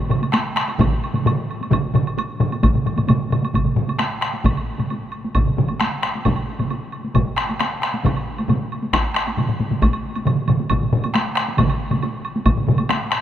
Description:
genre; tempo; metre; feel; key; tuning
japanese traditional, taiko drum ensemble; 134 BPM; 4/4; straight; none; none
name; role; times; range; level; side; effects
solo taiko drums; percussion; 0.1-13.2 s; none; -22 LUFS; left 4 dB; none
taiko ensemble; percussion; 0.1-13.2 s; none; -24 LUFS; right 5 dB; none
woodblock; percussion; 0.1-13.0 s; none; -29 LUFS; right 4 dB; none
taiko ensemble; percussion; 0.2-13.0 s; none; -26 LUFS; equal; none
taiko ensemble; percussion; 0.8-12.6 s; none; -23 LUFS; equal; none
room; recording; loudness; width
moderate huge ambient reverb, RT60 3.9 s; none; -18 LUFS; side -11 dB against mid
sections
0.0-3.5 A section; 3.5-13.2 B section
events
speeding up 0.0-13.2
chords
none

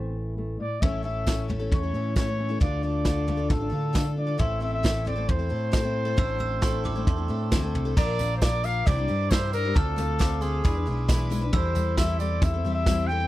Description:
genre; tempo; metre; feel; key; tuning
indie folk with a building arrangement; 134 BPM; 4/4; straight; unclear; A4 = 440 Hz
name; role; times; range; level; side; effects
mellow trumpet; melody; 0.0-13.3 s; G#4 to G5; -30 LUFS; left 1 dB; none
fingerpicked steel-string acoustic guitar; accompaniment; 0.0-6.2 s; A2 to C#5; -34 LUFS; left 2 dB; none
picked electric bass; bass; 0.0-13.3 s; A1 to D3; -28 LUFS; equal; none
picked twelve-string acoustic guitar; accompaniment; 0.8-13.3 s; A2 to C5; -33 LUFS; left 5 dB; none
vintage brush drum kit; drums; 0.8-13.0 s; crash cymbal, kick drum, snare drum, toms; -24 LUFS; equal; none
tambourine; percussion; 1.3-13.0 s; none; -44 LUFS; right 15 dB; none
glockenspiel with brass mallets; second line; 4.4-13.3 s; A5 to F6; -37 LUFS; right 5 dB; none
hand-pumped harmonium; sustained chords; 4.4-7.9 s; A3 to E4; -38 LUFS; right 3 dB; none
room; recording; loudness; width
little or no reverb; dry, close 1970s-style studio recording; -23 LUFS; side -15 dB against mid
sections
0.8-8.0 A section; 8.0-13.3 B section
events
none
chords
0.0 Am; 0.8 A; 2.6 Dm; 4.4 Am; 8.0 Bb; 8.9 Cadd9; 9.7 Dm7; 10.6 E7; 11.5 Am7/E

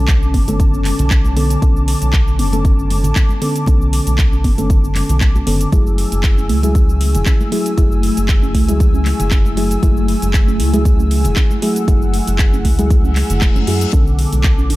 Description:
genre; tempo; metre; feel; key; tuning
deep house; 117 BPM; 4/4; swing 54% on 16ths; B minor; A4 = 440 Hz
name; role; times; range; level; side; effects
airy breathy pad; sustained chords; 0.0-14.8 s; A3 to E6; -28 LUFS; equal; chorus, sidechain pumping
mellow FM electric piano; stabs; 0.0-14.8 s; D3 to A4; -22 LUFS; left 1 dB; chorus, sidechain pumping, tape echo
round analog bass; bass; 0.0-14.8 s; E1 to F#2; -17 LUFS; equal; sidechain pumping
ethereal airy pad; texture; 0.0-14.8 s; D3 to A5; -26 LUFS; left 1 dB; ensemble chorus, built-in reverb, phaser, sidechain pumping
electronic kick drum; drums; 0.1-14.6 s; none; -14 LUFS; equal; studio reverb
house drum kit; drums; 0.1-14.8 s; cabasa, handclaps, hi-hat; -25 LUFS; right 1 dB; studio reverb
warbly dusty pluck; arpeggios; 0.2-14.8 s; G#3 to F#4; -26 LUFS; right 3 dB; chorus, sidechain pumping, tape echo
congas; percussion; 0.5-14.4 s; none; -28 LUFS; right 1 dB; none
reverse cymbal; sound effects; 13.1-13.9 s; none; -29 LUFS; left 6 dB; none
room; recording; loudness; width
little or no reverb; none; -12 LUFS; side -17 dB against mid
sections
0.0-14.8 A section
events
filter sweep on synth pluck 0.0-14.8; reverse cymbal 13.1-13.9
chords
0.0 Bm9; 5.7 F#m9; 13.9 Bm9

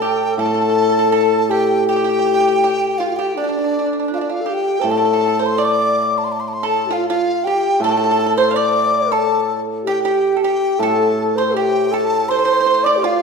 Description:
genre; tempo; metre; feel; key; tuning
chinese traditional, Chinese chamber ensemble; 81 BPM; 2/4; rubato; unclear; A4 = 440 Hz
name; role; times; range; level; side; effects
mellow hollow large dizi; melody; 0.0-13.2 s; D5 to D6; -19 LUFS; equal; none
bright low xiao; second line; 0.0-13.2 s; D4 to D5; -19 LUFS; left 2 dB; none
pipa; second line; 0.0-13.2 s; D4 to F5; -23 LUFS; right 6 dB; none
hammered dulcimer; accompaniment; 0.0-13.0 s; A2; -22 LUFS; left 1 dB; none
room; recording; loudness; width
wet recital hall reverb, RT60 1.7 s; heard from further back in the room; -14 LUFS; side -5 dB against mid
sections
0.0-4.9 A section; 4.9-13.2 B section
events
none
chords
none

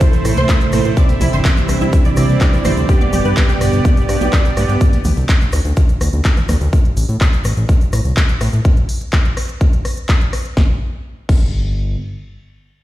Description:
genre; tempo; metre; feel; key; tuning
progressive house; 125 BPM; 4/4; straight; G major; A4 = 440 Hz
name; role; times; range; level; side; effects
airy breathy pad; sustained chords; 0.0-4.8 s; B2 to A4; -22 LUFS; equal; chorus, sidechain pumping
soft supersaw; stabs; 0.0-4.8 s; A3 to E5; -20 LUFS; right 4 dB; sidechain pumping, ping-pong delay
breakbeat sampler-style drum kit; drums; 0.0-6.6 s; hi-hat, shaker, snare drum; -35 LUFS; right 1 dB; none
deep house drum kit; drums; 0.0-11.4 s; crash cymbal, handclaps, hi-hat, rim click, snare drum; -24 LUFS; left 1 dB; sidechain pumping on hats, sidechain pumping on cymbals
electronic kick drum; drums; 0.0-11.4 s; none; -12 LUFS; equal; none
egg shaker; percussion; 0.0-8.6 s; none; -38 LUFS; left 6 dB; none
electronic congas, bongos and toms; percussion; 0.0-6.6 s; none; -26 LUFS; right 1 dB; sidechain pumping on perc, sidechain pumping on toms
fat analog bass; bass; 0.3-12.0 s; G1 to A2; -16 LUFS; equal; sidechain pumping
wide unison pluck; arpeggios; 0.4-4.4 s; E4 to D6; -25 LUFS; equal; ensemble chorus, sidechain pumping, ping-pong delay
room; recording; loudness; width
little or no reverb; played on a big sound system in a bare room, stone room reverb; -12 LUFS; side -15 dB against mid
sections
0.0-10.6 A section; 10.6-12.8 B section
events
drop 0.0-10.6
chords
0.0 Am; 1.0 Cadd9; 2.9 G; 4.8 N.C.

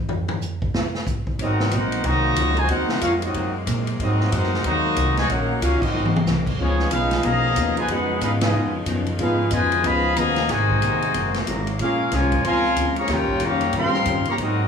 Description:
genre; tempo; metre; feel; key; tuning
jazz, big band swing; 185 BPM; 4/4; swing 62% on 8ths; Ab major; A4 = 439 Hz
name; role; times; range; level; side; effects
swinging big-band drum kit; drums; 0.1-14.5 s; crash cymbal, hi-hat, kick drum, ride cymbal, snare drum, toms; -27 LUFS; equal; none
mellow trumpet section; melody; 1.4-14.7 s; Cb4 to C6; -22 LUFS; left 1 dB; none
dark trombone section; second line; 1.4-14.7 s; Cb3 to G4; -26 LUFS; right 2 dB; none
vintage hollow-body jazz guitar; accompaniment; 1.4-14.6 s; Ab2 to Bb4; -29 LUFS; left 5 dB; none
edgy saxophone section; sustained chords; 1.4-14.7 s; Bb2 to Ab4; -34 LUFS; left 2 dB; none
upright bass; bass; 1.4-14.7 s; Gb1 to Bb2; -24 LUFS; equal; none
room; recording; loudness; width
moderate large studio reverb, RT60 1.2 s; studio ambience; -19 LUFS; side -6 dB against mid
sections
0.0-1.4 A section; 1.4-14.7 B section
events
drum solo 0.0-1.4; band accent 5.8, 8.4; drum fill 5.9-6.3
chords
0.0 N.C.; 1.4 Ab9; 5.3 Ebm7; 5.9 Ab9; 6.6 Db9; 10.5 Ab9; 11.8 Bbm7; 13.1 Eb9

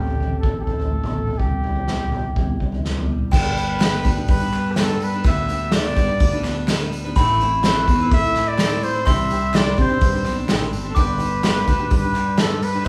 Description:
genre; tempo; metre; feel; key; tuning
indie folk with a building arrangement; 126 BPM; 4/4; straight; G major; A4 = 439 Hz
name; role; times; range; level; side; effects
mellow trumpet; melody; 0.0-12.9 s; G4 to E5; -27 LUFS; equal; none
fingerpicked steel-string acoustic guitar; accompaniment; 0.0-5.3 s; A2 to G4; -37 LUFS; equal; none
fingered electric bass; bass; 0.0-12.8 s; G1 to C3; -27 LUFS; equal; none
unplugged drum kit; drums; 0.1-12.9 s; crash cymbal, hi-hat, kick drum, snare drum, toms; -23 LUFS; equal; none
glockenspiel with soft plastic mallets; second line; 3.3-12.9 s; G5 to D6; -28 LUFS; equal; none
picked steel-string acoustic guitar; accompaniment; 3.3-12.9 s; G2 to B4; -30 LUFS; equal; none
tambourine; percussion; 3.3-12.9 s; none; -45 LUFS; equal; none
group handclap; percussion; 3.8-12.5 s; none; -39 LUFS; equal; none
room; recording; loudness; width
moderate large studio reverb, RT60 0.9 s; band playing live in one room, studio reverb; -20 LUFS; mono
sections
0.0-3.3 A section; 3.3-12.9 B section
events
none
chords
0.0 Am; 1.4 C; 3.3 G; 7.2 Amadd9; 9.1 Cadd9; 11.0 G

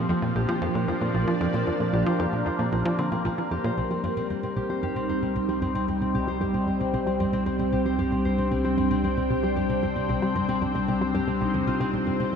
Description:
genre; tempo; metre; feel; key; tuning
ambient, sequencer-driven space music; 114 BPM; 4/4; straight; C minor; A4 = 440 Hz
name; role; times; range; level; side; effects
phased analog pad; sustained chords; 0.0-12.4 s; F3 to G5; -25 LUFS; equal; phaser, chorus, shimmer reverb
concert harp; arpeggios; 0.0-12.4 s; C3 to C5; -32 LUFS; left 4 dB; auto-pan, tape echo, shimmer reverb
tight sequencer bass; riff; 0.0-12.4 s; Bb1 to G3; -29 LUFS; right 1 dB; tape echo, shimmer reverb
analog drone; bass; 5.0-12.4 s; C2; -35 LUFS; right 1 dB; chorus
room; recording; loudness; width
wet concert hall reverb, RT60 1.9 s; none; -23 LUFS; side -6 dB against mid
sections
0.0-3.8 A section; 3.8-12.4 A section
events
filter sweep on analog synth bass 3.8-12.4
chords
0.0 Bb; 3.8 Cm

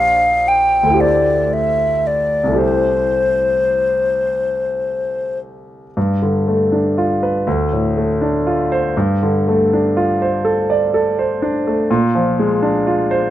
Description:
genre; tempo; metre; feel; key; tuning
classical, impressionist duo for flute and grand piano; 35-42 BPM (dotted quarters); 6/8; rubato; unclear; A4 = 442 Hz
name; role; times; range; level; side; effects
hollow concert flute; melody; 0.0-5.4 s; C5 to G5; -15 LUFS; left 1 dB; none
clear concert grand piano; accompaniment; 0.0-13.3 s; Bb1 to D5; -16 LUFS; equal; none
room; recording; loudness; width
light reverb; dark, warm production; -14 LUFS; side -13 dB against mid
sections
0.0-6.0 A section; 6.0-13.3 B section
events
none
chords
0.0 Bb69; 1.0 D9sus4; 2.6 C6; 6.0 G9; 7.5 Dm7; 8.9 G11; 11.9 Bb9

